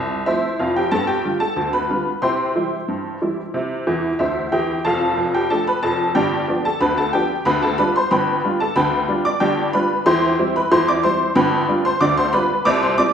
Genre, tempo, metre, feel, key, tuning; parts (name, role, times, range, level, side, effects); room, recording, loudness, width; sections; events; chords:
ragtime piano; 92 BPM; 2/4; straight; A4 = 440 Hz
honky-tonk upright piano; solo; 0.0-13.1 s; F1 to D6; -16 LUFS; equal
wet large studio reverb, RT60 1.4 s; band playing live in one room; -17 LUFS; side -8 dB against mid
0.0-4.9 A section; 4.9-13.1 B section
honky-tonk piano fill 3.9-4.9
0.0 F; 0.9 G7; 2.2 C; 4.9 Dm/F; 6.2 G7; 10.1 C/E; 11.4 G7